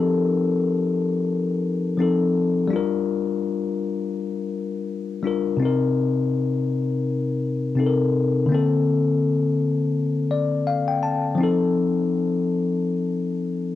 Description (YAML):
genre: R&B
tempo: 83 BPM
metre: 4/4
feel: swing 58% on 16ths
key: C dorian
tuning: A4 = 440 Hz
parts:
  - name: bell-like tine electric piano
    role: solo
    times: 0.0-13.8 s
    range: C3 to A5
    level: -20 LUFS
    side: left 3 dB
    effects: cassette tape
room: wet booth ambience, RT60 0.2 s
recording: home recording on cassette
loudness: -20 LUFS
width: side -13 dB against mid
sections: 0.0-5.6 A section; 5.6-13.8 B section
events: tine electric piano fill 9.9-11.4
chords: 0.0 F7; 2.7 Gm7; 5.6 Cm7; 8.5 Bbmaj7/D; 11.4 F7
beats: 0.55 1.27 1.99 | 2.71 3.44 4.16 4.88 | 5.61 6.33 7.05 7.77 | 8.50 9.22 9.94 10.66 | 11.39 12.11 12.83 13.56